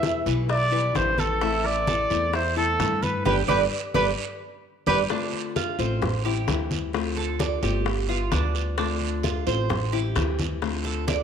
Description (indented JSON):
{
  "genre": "latin, Cuban son and guajira",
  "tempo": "130 BPM",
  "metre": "4/4",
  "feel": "straight",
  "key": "unclear",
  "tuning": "A4 = 440 Hz",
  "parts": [
    { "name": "warm trumpet", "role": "melody", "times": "0.0-5.0 s", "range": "A4 to E5", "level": "-25 LUFS", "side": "equal", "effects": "none" },
    { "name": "nylon-string guitar", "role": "accompaniment", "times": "0.0-11.2 s", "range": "B2 to F4", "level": "-30 LUFS", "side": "left 10 dB", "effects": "none" },
    { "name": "Cuban tres", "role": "arpeggios", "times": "0.0-11.2 s", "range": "D4 to E5", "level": "-29 LUFS", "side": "right 10 dB", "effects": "none" },
    { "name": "upright bass", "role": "bass", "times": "0.0-11.2 s", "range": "G1 to G2", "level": "-28 LUFS", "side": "equal", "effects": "none" },
    { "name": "bongos", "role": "percussion", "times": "0.0-11.2 s", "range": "none", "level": "-33 LUFS", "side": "left 11 dB", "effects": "none" },
    { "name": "congas", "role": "percussion", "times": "0.0-11.2 s", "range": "none", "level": "-32 LUFS", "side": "equal", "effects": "none" },
    { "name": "guiro", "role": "percussion", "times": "0.0-11.2 s", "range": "none", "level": "-36 LUFS", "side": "right 12 dB", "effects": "none" }
  ],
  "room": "moderate echo chamber reverb, RT60 1.4 s, studio reverb",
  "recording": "1960s-style stereo with parts hard left and right",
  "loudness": "-22 LUFS",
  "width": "side -7 dB against mid",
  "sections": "0.0-5.1 A section; 5.1-11.2 B section",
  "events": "band accent 3.3-5.1; drum fill 4.2-5.1",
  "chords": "0.0 Em; 1.4 Am; 3.3 G; 5.1 Dm7; 6.0 Am7; 6.9 Dm7; 7.9 G7; 8.8 Dm7; 9.7 Am7; 10.6 Dm7"
}